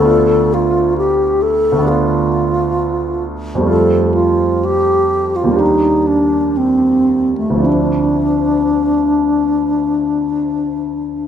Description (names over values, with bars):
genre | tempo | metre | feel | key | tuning
classical, impressionist duo for alto flute and grand piano | 53-68 BPM | 4/4 | rubato | D dorian | A4 = 440 Hz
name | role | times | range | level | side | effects
alto flute | melody | 0.0-11.3 s | A3 to A4 | -14 LUFS | left 1 dB | none
clear grand piano | accompaniment | 0.0-11.3 s | D2 to G4 | -17 LUFS | right 2 dB | none
room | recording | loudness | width
moderate recital hall reverb, RT60 1.5 s | none | -12 LUFS | side -9 dB against mid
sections
0.0-11.3 A section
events
none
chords
0.1 Dm6; 3.7 Fadd9; 5.6 Ebmaj7; 7.7 Dm9